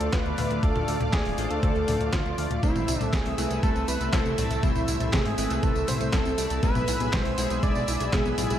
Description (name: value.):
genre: italo disco.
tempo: 120 BPM.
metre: 4/4.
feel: straight.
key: A harmonic minor.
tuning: A4 = 440 Hz.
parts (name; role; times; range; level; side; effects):
wide unison lead; melody; 0.0-8.6 s; E4 to D5; -30 LUFS; right 1 dB; ping-pong delay.
lush unison pad; sustained chords; 0.0-8.6 s; A3 to E6; -34 LUFS; right 1 dB; chorus.
chorused polysynth; stabs; 0.0-8.6 s; G#3 to E5; -32 LUFS; left 5 dB; none.
fat analog bass; bass; 0.0-8.6 s; D1 to D2; -30 LUFS; equal; tube saturation.
detuned 8-bit digital drum machine; drums; 0.0-8.6 s; handclaps, hi-hat, snare drum, tambourine, toms; -31 LUFS; left 1 dB; none.
electronic kick drum; drums; 0.1-8.2 s; none; -26 LUFS; equal; none.
wide unison pluck; arpeggios; 2.6-8.6 s; G#3 to A4; -35 LUFS; right 4 dB; cassette tape, ping-pong delay.
room: light reverb.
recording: dark, warm production.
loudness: -23 LUFS.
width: side -10 dB against mid.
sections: 0.0-8.6 A section.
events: none.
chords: 0.0 Dm; 2.6 Am; 6.6 E/B.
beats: 0.13 | 0.63 1.13 1.63 2.13 | 2.63 3.13 3.63 4.13 | 4.63 5.13 5.63 6.13 | 6.63 7.13 7.63 8.13.